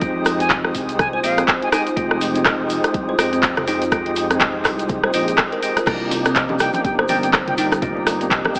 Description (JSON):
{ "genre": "afro house", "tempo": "123 BPM", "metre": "4/4", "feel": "swing 58% on 16ths", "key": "F dorian", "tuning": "A4 = 440 Hz", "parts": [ { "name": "dark analog pad", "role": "sustained chords", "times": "0.0-8.6 s", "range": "F4 to Eb6", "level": "-31 LUFS", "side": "equal", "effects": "chorus, sidechain pumping" }, { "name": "kalimba", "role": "arpeggios", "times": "0.0-8.4 s", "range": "C4 to Eb5", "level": "-27 LUFS", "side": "equal", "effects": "sidechain pumping, digital delay" }, { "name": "overdriven tonewheel organ", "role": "stabs", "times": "0.0-8.6 s", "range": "Ab3 to G4", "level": "-27 LUFS", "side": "equal", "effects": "chorus vibrato, stopped rotary speaker, sidechain pumping, digital delay" }, { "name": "smooth synth bass", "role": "bass", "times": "0.0-8.6 s", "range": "F1 to F2", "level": "-31 LUFS", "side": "equal", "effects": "sidechain pumping" }, { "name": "afro-pop drum kit", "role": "drums", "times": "0.0-8.6 s", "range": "crash cymbal, handclaps, hi-hat, rim click, toms", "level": "-22 LUFS", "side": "equal", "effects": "small room ambience" }, { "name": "electronic kick drum", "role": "drums", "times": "0.0-8.6 s", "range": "none", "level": "-31 LUFS", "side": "equal", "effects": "small room ambience" }, { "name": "egg shaker", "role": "percussion", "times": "0.0-8.6 s", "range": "none", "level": "-40 LUFS", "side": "equal", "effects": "none" }, { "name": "reedy concert flute", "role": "melody", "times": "0.4-1.8, 6.6-8.6 s", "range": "F5 to Ab5", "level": "-26 LUFS", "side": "equal", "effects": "digital delay" }, { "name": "congas", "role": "percussion", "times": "5.9-8.5 s", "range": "none", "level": "-32 LUFS", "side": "equal", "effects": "none" } ], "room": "light reverb, small room ambience", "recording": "AM radio sound", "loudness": "-19 LUFS", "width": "mono", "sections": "0.0-8.6 A section", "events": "none", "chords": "0.0 Fm7; 5.9 Cm7" }